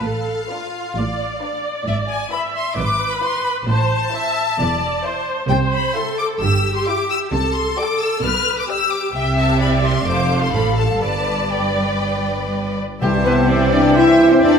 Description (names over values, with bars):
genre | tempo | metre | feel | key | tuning
quick classical-period movement for symphony orchestra | 131 BPM | 4/4 | rubato | A minor, C major from 5.5 s | A4 = 444 Hz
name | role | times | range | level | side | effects
rich studio violin section | melody | 0.0-14.6 s | E5 to F6 | -23 LUFS | left 4 dB | none
rich studio viola section | accompaniment | 0.0-14.6 s | F4 to E5 | -23 LUFS | equal | none
bright studio cello section | bass | 0.0-14.6 s | E2 to E3 | -24 LUFS | right 2 dB | none
rich studio double bass section | bass | 0.0-14.6 s | E1 to E2 | -23 LUFS | right 3 dB | none
rich studio violin section | second line | 0.5-14.6 s | D4 to F5 | -25 LUFS | left 3 dB | none
mellow hollow flute section | second line | 13.0-14.6 s | G5 | -25 LUFS | left 1 dB | none
warm clarinet | second line | 13.0-14.6 s | G4 to E5 | -23 LUFS | equal | none
warm oboe | second line | 13.0-14.6 s | G4 | -24 LUFS | right 2 dB | none
mellow bassoon | accompaniment | 13.0-14.6 s | E3 | -23 LUFS | equal | none
dark French horn section | sustained chords | 13.0-14.6 s | G3 to E4 | -13 LUFS | left 2 dB | none
timpani | percussion | 13.0-13.7 s | C3 | -25 LUFS | right 3 dB | none
room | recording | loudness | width
wet scoring stage reverb, RT60 2.0 s | none | -16 LUFS | side -6 dB against mid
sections
0.0-13.0 A section; 13.0-14.6 B section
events
none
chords
0.0 Bm7b5/A; 1.9 E/G#; 3.7 Am; 5.5 C; 7.3 D7/C; 8.2 G/B; 9.2 C; 10.1 F; 11.0 G; 13.0 C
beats
| 0.03 0.49 0.96 1.42 | 1.88 2.32 2.77 3.23 | 3.68 4.14 4.59 5.04 | 5.49 5.95 6.42 6.87 | 7.33 7.78 8.24 8.69 | 9.15 9.61 10.07 10.54 | 11.03 11.53 12.03 12.52 | 13.01 13.49 13.95 14.41